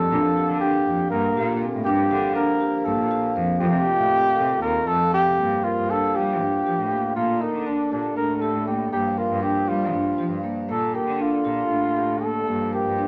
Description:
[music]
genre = contemporary instrumental, chamber music in an uneven meter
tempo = 238 BPM (eighths)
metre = 7/8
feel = straight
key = Bb major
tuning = A4 = 440 Hz
[part]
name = warm flugelhorn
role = melody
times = 0.0-13.1 s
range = D4 to Bb4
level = -25 LUFS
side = equal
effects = none
[part]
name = pedal harmonium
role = sustained chords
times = 0.0-13.1 s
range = D3 to A4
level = -32 LUFS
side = equal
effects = none
[part]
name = marimba with soft mallets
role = arpeggios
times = 0.0-13.1 s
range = Bb3 to Bb4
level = -28 LUFS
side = equal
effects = none
[part]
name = muted cello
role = bass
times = 0.1-13.1 s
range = Eb2 to G3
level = -31 LUFS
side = equal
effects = none
[sound]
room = moderate studio ambience, RT60 0.5 s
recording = none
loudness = -22 LUFS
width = mono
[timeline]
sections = 0.0-5.4 A section; 5.4-13.1 B section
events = none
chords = 0.1 Bb6; 1.9 Gm7; 3.6 F7; 5.4 Gm7; 7.2 Bbmaj7; 8.9 Gm7; 10.7 Bbmaj7; 12.5 Gm7

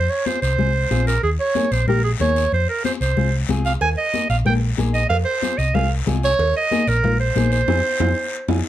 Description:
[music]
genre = latin, cumbia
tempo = 186 BPM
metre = 4/4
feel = straight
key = F minor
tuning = A4 = 440 Hz
[part]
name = bright clarinet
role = melody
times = 0.0-8.6 s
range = Ab4 to Ab5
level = -20 LUFS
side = right 3 dB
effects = none
[part]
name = hollow-body short-scale picked electric bass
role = bass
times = 0.0-8.6 s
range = Bb1 to F2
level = -20 LUFS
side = equal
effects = none
[part]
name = nylon-string guitar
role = accompaniment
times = 0.3-8.6 s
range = Bb3 to Ab4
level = -26 LUFS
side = left 4 dB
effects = none
[part]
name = congas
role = percussion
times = 0.3-8.6 s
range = none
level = -27 LUFS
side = left 7 dB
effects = none
[part]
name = guiro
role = percussion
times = 0.3-8.6 s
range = none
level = -34 LUFS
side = left 6 dB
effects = none
[part]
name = cowbell and timbales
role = percussion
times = 3.8-8.6 s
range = none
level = -29 LUFS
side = right 6 dB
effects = none
[sound]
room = light reverb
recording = dark, warm production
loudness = -17 LUFS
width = side -13 dB against mid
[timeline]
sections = 0.0-8.7 A section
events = band accent 7.7-8.7; drum fill 8.2-8.7; nylon-string guitar fill 8.3-8.7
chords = 0.0 Fm; 1.2 Ebsus4; 2.5 Fm; 3.8 Ebsus4; 5.1 Fm; 6.4 Ebsus4; 7.7 Fm

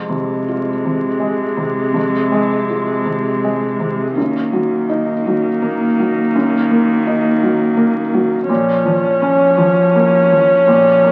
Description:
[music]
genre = neoclassical piano and strings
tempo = 55 BPM (dotted quarters)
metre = 6/8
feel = rubato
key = unclear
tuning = A4 = 440 Hz
[part]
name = warm cello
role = second line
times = 0.0-11.1 s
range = C3 to F3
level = -24 LUFS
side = equal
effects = none
[part]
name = dark viola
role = accompaniment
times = 0.0-11.1 s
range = Ab3 to Db4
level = -18 LUFS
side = equal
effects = none
[part]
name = felt-muted upright piano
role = accompaniment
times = 0.0-11.1 s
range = F2 to F4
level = -20 LUFS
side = equal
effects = none
[sound]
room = moderate large studio reverb, RT60 0.9 s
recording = very old 78 rpm record, vinyl crackle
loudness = -16 LUFS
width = mono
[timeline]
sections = 0.0-11.1 A section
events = none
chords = 0.0 Fm; 4.2 Ebm/Gb; 8.5 Bbm

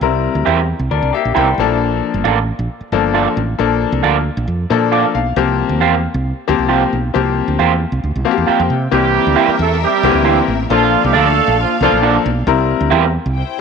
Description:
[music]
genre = soul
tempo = 135 BPM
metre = 4/4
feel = straight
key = unclear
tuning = A4 = 440 Hz
[part]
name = bright concert grand piano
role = accompaniment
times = 0.0-13.1 s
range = D3 to D6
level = -17 LUFS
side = left 10 dB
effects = none
[part]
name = woody fretless electric bass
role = bass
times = 0.0-13.4 s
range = G1 to C3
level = -18 LUFS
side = right 2 dB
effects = none
[part]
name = electric guitar through a small old amp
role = stabs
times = 0.5-13.0 s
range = Bb3 to D5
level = -18 LUFS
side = right 12 dB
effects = phaser
[part]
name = electric guitar through a small old amp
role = riff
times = 0.9-1.8 s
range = G3 to Bb4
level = -23 LUFS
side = left 10 dB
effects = none
[part]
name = clear horn section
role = second line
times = 8.9-12.0 s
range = F3 to A4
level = -16 LUFS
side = right 13 dB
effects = none
[part]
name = warm studio string section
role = second line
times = 8.9-13.6 s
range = Bb3 to G5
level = -22 LUFS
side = left 9 dB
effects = none
[sound]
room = light reverb, small room reverb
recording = 1960s-style stereo with parts hard left and right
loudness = -12 LUFS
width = side -6 dB against mid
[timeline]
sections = 0.0-8.9 A section; 8.9-13.6 B section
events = grand piano fill 0.9-1.8, 4.7-5.4, 8.0-8.9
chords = 0.0 C7; 1.6 Bbmaj7; 5.4 C7sus4; 8.9 C7; 10.7 Bbmaj7; 12.5 C7

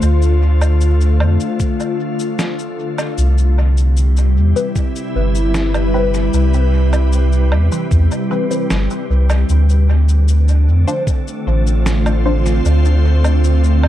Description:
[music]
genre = ambient dub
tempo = 76 BPM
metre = 4/4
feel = straight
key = D dorian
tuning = A4 = 440 Hz
[part]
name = soft additive organ-like pad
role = sustained chords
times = 0.0-13.9 s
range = C3 to C5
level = -20 LUFS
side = left 1 dB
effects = ensemble chorus, built-in reverb
[part]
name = soft dub sub bass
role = bass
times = 0.0-13.9 s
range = G1 to F2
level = -12 LUFS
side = equal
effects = none
[part]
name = electronic cabasa, woodblock and snare drum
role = drums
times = 0.0-13.9 s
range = none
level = -25 LUFS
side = right 1 dB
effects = dub echo
[part]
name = electronic kick drum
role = drums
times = 1.6-11.2 s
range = none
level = -17 LUFS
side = equal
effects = none
[part]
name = filtered dub chord stab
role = stabs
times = 4.6-12.4 s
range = E3 to C5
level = -23 LUFS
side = left 2 dB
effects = phaser, dub echo
[part]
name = wind-like tuned noise texture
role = texture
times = 10.4-13.9 s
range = C4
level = -28 LUFS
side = right 5 dB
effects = built-in reverb
[sound]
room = digital ambience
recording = echo-heavy mix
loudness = -12 LUFS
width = side -13 dB against mid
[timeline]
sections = 0.0-13.9 A section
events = none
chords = 0.0 Dm7; 3.2 Cmaj7; 9.5 Dm7

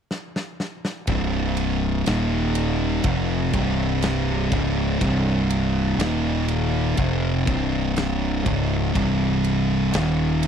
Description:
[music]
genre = stoner and doom metal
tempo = 61 BPM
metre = 4/4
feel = straight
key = C minor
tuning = A4 = 440 Hz
[part]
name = big rock drum kit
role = drums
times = 0.1-10.5 s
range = kick drum, ride cymbal, snare drum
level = -30 LUFS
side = equal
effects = none
[part]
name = thick fuzz guitar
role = riff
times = 1.1-10.5 s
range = C2 to F3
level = -21 LUFS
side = equal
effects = distortion
[part]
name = fuzz fingered electric bass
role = bass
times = 1.1-10.5 s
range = C1 to F1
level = -26 LUFS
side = equal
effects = overdrive
[sound]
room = little or no reverb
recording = dry, close 1970s-style studio recording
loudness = -20 LUFS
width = side -8 dB against mid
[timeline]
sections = 0.0-1.1 A section; 1.1-10.5 B section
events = drum fill 0.1-1.1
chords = 0.0 N.C.; 1.1 C5; 2.1 Eb5; 3.0 C5; 6.0 Eb5; 7.0 C5; 9.9 Eb5

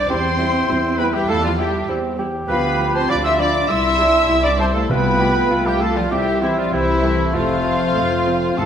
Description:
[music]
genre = quick classical-period movement for symphony orchestra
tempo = 99 BPM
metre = 4/4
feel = rubato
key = C major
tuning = A4 = 439 Hz
[part]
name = muted studio violin section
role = melody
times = 0.0-8.7 s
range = E5 to E6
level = -25 LUFS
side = left 1 dB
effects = none
[part]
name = bright clarinet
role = second line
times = 0.0-8.7 s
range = E4 to E5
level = -27 LUFS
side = left 1 dB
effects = none
[part]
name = dark cor anglais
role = second line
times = 0.0-8.7 s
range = E4 to E5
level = -27 LUFS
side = right 2 dB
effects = none
[part]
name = muted studio violin section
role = second line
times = 0.0-8.7 s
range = E4 to E5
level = -25 LUFS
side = equal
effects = none
[part]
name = warm trumpet section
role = stabs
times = 0.0-8.7 s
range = E4 to E5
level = -24 LUFS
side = right 1 dB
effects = none
[part]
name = muted studio cello section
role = bass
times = 0.0-8.7 s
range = E3 to E4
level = -25 LUFS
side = right 1 dB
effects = none
[part]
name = muted studio double bass section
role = bass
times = 0.0-8.7 s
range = F1 to E2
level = -24 LUFS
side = right 1 dB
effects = none
[part]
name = silver concert flute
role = second line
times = 0.1-8.7 s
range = C5 to C6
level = -26 LUFS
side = left 2 dB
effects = none
[part]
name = muted studio viola section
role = accompaniment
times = 0.1-8.7 s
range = E3 to F4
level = -30 LUFS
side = equal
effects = none
[part]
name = warm bassoon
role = accompaniment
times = 0.1-8.7 s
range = A3 to G4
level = -26 LUFS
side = equal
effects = none
[part]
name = clear French horn section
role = sustained chords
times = 0.1-8.7 s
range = F3 to A4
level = -26 LUFS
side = left 3 dB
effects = none
[part]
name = timpani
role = percussion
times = 4.9-8.7 s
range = G2 to C3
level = -25 LUFS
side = left 2 dB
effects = none
[sound]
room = wet scoring stage reverb, RT60 1.9 s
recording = none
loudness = -15 LUFS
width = side -8 dB against mid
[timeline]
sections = 0.0-8.7 A section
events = none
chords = 0.1 C/E; 2.5 Bdim/D; 3.7 C; 4.9 F/C; 6.1 C; 7.3 F

